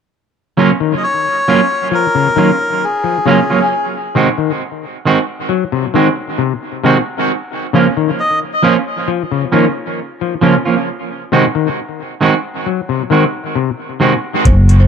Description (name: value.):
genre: dub reggae.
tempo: 67 BPM.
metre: 4/4.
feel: straight.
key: Gb lydian.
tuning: A4 = 440 Hz.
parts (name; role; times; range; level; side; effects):
clean electric guitar; accompaniment; 0.6-14.1 s; Eb3 to Gb4; -15 LUFS; right 5 dB; tape echo.
mellow clav; arpeggios; 0.6-14.2 s; C3 to Gb3; -18 LUFS; left 10 dB; tape echo.
melodica; melody; 1.0-8.4 s; Ab4 to Eb5; -16 LUFS; left 2 dB; tape echo.
woody fretless electric bass; bass; 14.5-14.9 s; Gb1; -6 LUFS; equal; none.
soft vintage rhythm box; drums; 14.5-14.9 s; hi-hat, kick drum; -13 LUFS; equal; overdrive.
cowbell; percussion; 14.5-14.7 s; none; -24 LUFS; right 4 dB; tape echo.
room: moderate spring reverb, RT60 2.7 s.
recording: echo-heavy mix.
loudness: -12 LUFS.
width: side -7 dB against mid.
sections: 0.1-14.9 A section.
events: none.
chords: 0.1 Gbmaj7; 3.7 Ab7; 7.3 Db6; 10.9 Ab7.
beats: | 0.12 1.02 1.92 2.81 | 3.71 4.60 5.50 6.39 | 7.29 8.18 9.08 9.97 | 10.87 11.76 12.66 13.55 | 14.45.